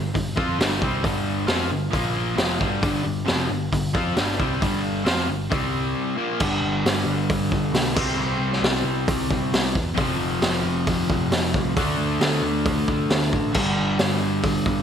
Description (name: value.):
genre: hard rock.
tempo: 134 BPM.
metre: 4/4.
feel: straight.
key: unclear.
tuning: A4 = 440 Hz.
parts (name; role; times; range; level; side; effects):
cranked stack guitar; riff; 0.0-14.8 s; F2 to F4; -23 LUFS; left 1 dB; overdrive.
overdriven picked electric bass; bass; 0.0-14.8 s; F1 to F2; -28 LUFS; equal; none.
raw garage drum kit; drums; 0.2-14.8 s; crash cymbal, hi-hat, kick drum, snare drum; -24 LUFS; equal; gated reverb.
room: moderate plate reverb, RT60 1.6 s, small room ambience.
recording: bright 1980s-style digital production.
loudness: -20 LUFS.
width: side -8 dB against mid.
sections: 0.0-6.4 A section; 6.4-14.8 B section.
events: none.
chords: 0.0 G5; 1.9 Bb5; 2.4 G5; 5.5 C5; 6.2 Bb5; 6.4 G; 8.0 C5; 10.0 F5; 11.8 D5; 13.5 G5.